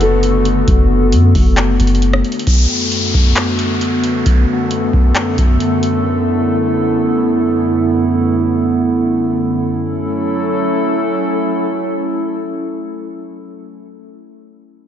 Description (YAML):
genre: hip hop, atmospheric cloud-rap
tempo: 134 BPM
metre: 4/4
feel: half-time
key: F# minor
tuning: A4 = 440 Hz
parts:
  - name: warbly tape-like pad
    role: sustained chords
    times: 0.0-14.0 s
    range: F#2 to A4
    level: -15 LUFS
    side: equal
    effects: chorus, built-in reverb, sidechain pumping
  - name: soft 808-style bass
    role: bass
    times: 0.0-2.2 s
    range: F#1 to F#2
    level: -13 LUFS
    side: equal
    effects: none
  - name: booming analog drum machine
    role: drums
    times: 0.0-5.9 s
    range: handclaps, hi-hat, kick drum, rim click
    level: -15 LUFS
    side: equal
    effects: none
  - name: downlifter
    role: sound effects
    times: 2.5-6.1 s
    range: none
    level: -22 LUFS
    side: left 2 dB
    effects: none
room: little or no reverb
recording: nothing above 7.5 kHz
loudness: -12 LUFS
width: side -9 dB against mid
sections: 0.0-2.5 A section; 2.5-9.6 B section; 9.6-13.2 C section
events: none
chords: 0.0 D6/F#; 6.1 E7sus4/F#; 9.6 F#m7